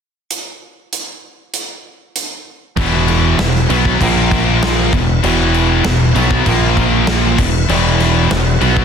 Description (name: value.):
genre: hard rock.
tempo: 98 BPM.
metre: 4/4.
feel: straight.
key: unclear.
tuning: A4 = 439 Hz.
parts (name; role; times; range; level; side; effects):
big rock drum kit; drums; 0.3-8.8 s; crash cymbal, hi-hat, kick drum, snare drum; -18 LUFS; equal; soft clipping on kick.
overdriven tonewheel organ; sustained chords; 2.8-8.8 s; A#3 to F#5; -27 LUFS; equal; none.
crunchy overdriven guitar; riff; 2.8-8.8 s; E2 to B3; -19 LUFS; right 11 dB; none.
scooped high-gain guitar; riff; 2.8-8.8 s; E2 to B3; -17 LUFS; left 10 dB; distortion.
scooped high-gain guitar; riff; 2.8-8.8 s; E2 to B3; -21 LUFS; right 1 dB; distortion.
growling fingered electric bass; bass; 2.8-8.8 s; E1 to B1; -17 LUFS; equal; overdrive.
room: little or no reverb.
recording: dense, heavily limited modern master.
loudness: -12 LUFS.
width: side -7 dB against mid.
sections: 0.3-2.8 A section; 2.8-8.8 B section.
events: none.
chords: 0.3 N.C.; 2.8 E5; 4.0 A#5; 4.9 E5; 6.5 A#5; 7.4 E5.